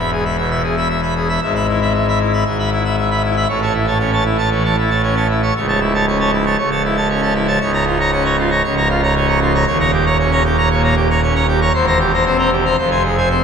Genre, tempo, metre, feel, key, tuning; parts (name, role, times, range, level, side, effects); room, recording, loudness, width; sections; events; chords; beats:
classical, organ toccata; 116 BPM; 4/4; straight; A4 = 440 Hz
pipe organ, full organ; solo; 0.0-13.4 s; C#1 to B5; -13 LUFS; equal
wet church reverb, RT60 3.8 s; -13 LUFS; side -6 dB against mid
0.0-13.4 A section
0.0 E; 1.4 E/G#; 3.5 A; 5.6 A/C#; 7.6 Bbm/Db; 9.7 Eb7; 11.7 C7/E; 12.8 Fm
0.38 0.90 | 1.42 1.94 2.46 2.98 | 3.49 4.00 4.52 5.04 | 5.56 6.07 6.59 7.10 | 7.62 8.13 8.64 9.16 | 9.68 10.19 10.71 11.22 | 11.74 12.26 12.78 13.31